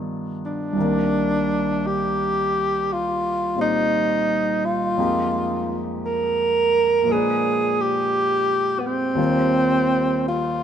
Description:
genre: jazz.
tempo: 57 BPM.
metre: 4/4.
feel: swing 66% on 8ths.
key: unclear.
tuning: A4 = 440 Hz.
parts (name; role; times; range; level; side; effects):
clear concert grand piano; accompaniment; 0.0-10.6 s; C2 to D5; -24 LUFS; left 1 dB; none.
breathy tenor saxophone; melody; 0.5-10.6 s; Cb4 to Bb4; -20 LUFS; right 1 dB; none.
room: moderate plate reverb, RT60 3.4 s.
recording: minimal, uncompressed stereo recording.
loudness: -19 LUFS.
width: side -8 dB against mid.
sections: 0.0-10.6 A section.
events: none.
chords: 0.0 G7b13; 0.8 Cm9; 5.0 Fm11; 7.1 Bb7b9; 9.2 Eb69.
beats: | 0.75 1.81 2.87 3.93 | 4.98 6.03 7.08 8.13 | 9.18 10.23.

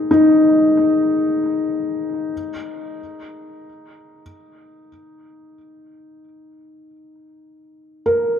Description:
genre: ambient.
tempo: free time.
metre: none.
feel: none.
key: unclear.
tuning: A4 = 440 Hz.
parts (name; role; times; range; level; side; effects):
felt-muted upright piano; solo; 0.0-8.4 s; D#4 to A#4; -16 LUFS; left 2 dB; analog delay.
room: moderate spring reverb, RT60 2.7 s.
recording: echo-heavy mix.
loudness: -15 LUFS.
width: side -8 dB against mid.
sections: 0.0-2.3 A section; 2.3-8.4 B section.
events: none.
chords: 0.0 D#m; 2.3 N.C..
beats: free time.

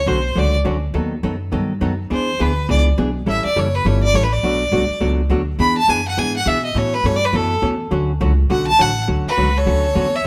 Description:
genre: country.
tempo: 206 BPM.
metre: 4/4.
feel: swing 61% on 8ths.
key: D major.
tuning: A4 = 440 Hz.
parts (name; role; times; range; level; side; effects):
clear fiddle; melody; 0.0-10.3 s; A4 to B5; -21 LUFS; equal; none.
upright bass; bass; 0.0-10.3 s; F#1 to B2; -22 LUFS; equal; none.
archtop guitar, miked and amplified; accompaniment; 0.1-10.3 s; B2 to A4; -24 LUFS; equal; none.
rich fiddle; second line; 9.3-10.3 s; F#4 to C#5; -31 LUFS; equal; none.
room: moderate stone room reverb, RT60 1.0 s.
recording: band playing live in one room.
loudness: -18 LUFS.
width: mono.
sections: 0.0-9.1 A section; 9.1-10.3 B section.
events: fiddle solo 0.0-9.1.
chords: 0.0 Dmaj7; 0.9 B7/D#; 2.1 E7; 3.3 A7; 4.4 Bm7; 5.6 E7; 6.8 Aadd9; 7.9 Dmaj7.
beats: 0.07 0.36 0.65 | 0.94 1.23 1.52 1.81 | 2.11 2.40 2.69 2.98 | 3.27 3.56 3.85 4.14 | 4.43 4.72 5.01 5.30 | 5.59 5.88 6.17 6.46 | 6.76 7.05 7.34 7.63 | 7.92 8.21 8.50 8.79 | 9.08 9.37 9.66 9.95 | 10.24.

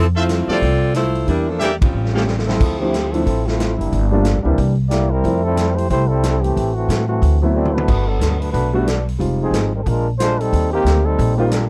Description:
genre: jazz, big band swing.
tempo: 182 BPM.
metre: 4/4.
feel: swing 63% on 8ths.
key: D minor.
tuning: A4 = 440 Hz.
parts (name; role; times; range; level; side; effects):
warm saxophone section; melody; 0.0-2.4 s; E3 to D5; -22 LUFS; equal; none.
upright bass; bass; 0.0-11.7 s; F1 to A2; -21 LUFS; equal; none.
brilliant trumpet section; stabs; 0.2-2.2 s; F4 to E#5; -24 LUFS; equal; none.
swinging big-band drum kit; drums; 0.3-11.6 s; crash cymbal, hi-hat, kick drum, ride cymbal, snare drum, toms; -25 LUFS; equal; none.
warm upright piano; accompaniment; 0.5-11.5 s; E3 to G4; -23 LUFS; equal; none.
warm trombone section; second line; 2.3-11.7 s; Eb3 to D5; -23 LUFS; equal; none.
room: little or no reverb.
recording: none.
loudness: -18 LUFS.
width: mono.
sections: 0.0-2.6 A section; 2.6-11.7 B section.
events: band accent 1.8; drum fill 1.9-2.6, 7.5-7.9; trombone section solo 2.6-11.7.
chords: 0.0 Fmaj7; 1.3 Em7b5; 1.9 A7alt; 2.6 Dm9; 3.9 Gm7; 4.6 C7; 5.2 Fmaj9; 6.6 Am; 7.2 D13; 7.9 Gmaj9; 9.2 Fm7; 9.9 Bb7; 10.5 Eb6.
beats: 0.29 0.62 0.95 | 1.28 1.61 1.94 2.27 | 2.60 2.93 3.26 3.59 | 3.92 4.25 4.58 4.91 | 5.24 5.57 5.90 6.23 | 6.56 6.89 7.22 7.55 | 7.88 8.21 8.54 8.87 | 9.20 9.53 9.86 10.19 | 10.52 10.85 11.18 11.51.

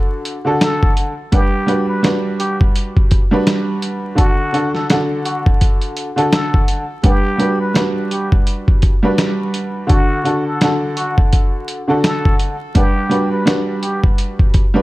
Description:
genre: hip hop, boom-bap hip-hop.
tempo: 84 BPM.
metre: 4/4.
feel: swing 59% on 16ths.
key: G major.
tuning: A4 = 439 Hz.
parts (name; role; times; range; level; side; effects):
clear upright piano; accompaniment; 0.0-14.8 s; D3 to F#5; -18 LUFS; right 1 dB; none.
dusty soul sampler-style drum kit; drums; 0.3-14.7 s; hi-hat, kick drum, snare drum; -14 LUFS; equal; none.
trumpet with plunger mute; melody; 0.6-14.0 s; F#4 to B4; -23 LUFS; equal; tape echo.
room: light reverb, small room ambience.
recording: dark, warm production, vinyl crackle, faint mains hum.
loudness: -14 LUFS.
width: side -19 dB against mid.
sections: 0.0-14.8 A section.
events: none.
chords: 0.0 D; 1.3 Gmaj7; 4.2 D; 7.0 Gmaj7; 9.9 D; 12.8 Gmaj7.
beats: 0.61 | 1.33 2.04 2.75 3.47 | 4.18 4.90 5.61 6.33 | 7.04 7.75 8.47 9.18 | 9.90 10.61 11.33 12.04 | 12.76 13.47 14.18.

